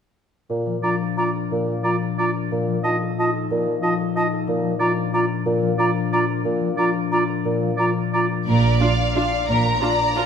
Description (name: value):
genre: classical, orchestral ballroom waltz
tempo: 180 BPM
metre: 3/4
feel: uneven beats, rubato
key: Bb major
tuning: A4 = 440 Hz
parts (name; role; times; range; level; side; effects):
- dark bassoon; accompaniment; 0.5-7.7 s; Bb2; -26 LUFS; right 1 dB; none
- concert harp; arpeggios; 0.5-10.3 s; Bb2 to Eb5; -25 LUFS; left 6 dB; none
- hollow silver concert flute; second line; 0.8-8.2 s; A5 to Bb5; -29 LUFS; equal; none
- warm clarinet; second line; 0.8-8.3 s; F4; -27 LUFS; right 1 dB; none
- warm oboe; second line; 0.8-8.3 s; D5 to Eb5; -26 LUFS; right 3 dB; none
- rich studio violin section; melody; 8.5-10.3 s; D5 to Bb5; -22 LUFS; left 1 dB; none
- warm studio violin section; second line; 8.5-10.3 s; Bb4 to F5; -25 LUFS; left 2 dB; none
- rich studio cello section; bass; 8.5-9.8 s; Bb2; -23 LUFS; right 3 dB; none
- warm studio double bass section; bass; 8.5-9.8 s; Bb1; -23 LUFS; right 4 dB; none
- warm studio viola section; accompaniment; 8.8-10.2 s; D4 to F4; -25 LUFS; right 2 dB; none
room: wet scoring stage reverb, RT60 1.8 s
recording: none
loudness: -19 LUFS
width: side -7 dB against mid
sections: 0.5-8.5 A section; 8.5-10.3 B section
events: none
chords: 0.5 Bb; 2.5 F7/Bb; 4.5 Bb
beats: | 0.50 0.83 1.18 | 1.51 1.84 2.19 | 2.52 2.85 3.19 | 3.51 3.83 4.16 | 4.48 4.80 5.14 | 5.46 5.79 6.13 | 6.45 6.78 7.12 | 7.45 7.79 8.14 | 8.47 8.81 9.15 | 9.49 9.82 10.17